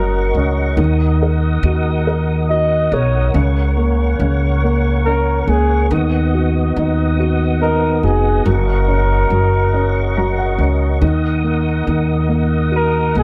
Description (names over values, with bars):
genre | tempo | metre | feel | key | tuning
pop | 47 BPM (dotted quarters) | 6/8 | straight | F# major | A4 = 443 Hz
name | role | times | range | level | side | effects
mellow flugelhorn | melody | 0.0-13.2 s | G#4 to D#5 | -21 LUFS | equal | none
dark upright piano | accompaniment | 0.0-13.2 s | C#3 to A#5 | -22 LUFS | equal | none
tonewheel organ | sustained chords | 0.0-13.2 s | B3 to D#6 | -26 LUFS | equal | chorus vibrato, slow rotary speaker
upright bass | bass | 0.0-13.2 s | E#1 to D#2 | -18 LUFS | equal | none
room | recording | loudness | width
light reverb, small room ambience | dark, warm production | -16 LUFS | mono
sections
0.0-13.2 A section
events
upright piano fill 9.7-11.0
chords
0.0 F#6; 0.8 D#m; 3.3 F#/C#; 5.9 B/D#; 8.5 F#6; 11.0 D#m